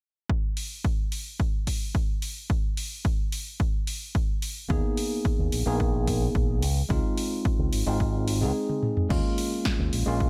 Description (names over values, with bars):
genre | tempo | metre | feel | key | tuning
nu-disco, nu disco | 109 BPM | 4/4 | straight | unclear | A4 = 440 Hz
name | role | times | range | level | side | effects
electronic kick drum | drums | 0.3-10.3 s | none | -29 LUFS | equal | none
house drum kit | drums | 0.6-10.0 s | crash cymbal, hi-hat, snare drum, toms | -36 LUFS | equal | none
bright tine electric piano | accompaniment | 4.7-10.3 s | Ab3 to Ab4 | -31 LUFS | equal | tape echo
fingered electric bass with an envelope filter | bass | 4.7-10.3 s | Ab1 to Eb2 | -30 LUFS | equal | sidechain pumping
room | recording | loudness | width
digital ambience | none | -27 LUFS | mono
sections
0.3-9.1 A section; 9.1-10.3 B section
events
drum fill 8.7-9.1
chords
0.3 N.C.; 4.7 Abmadd9; 6.6 Dbmaj9; 9.1 Eb9sus4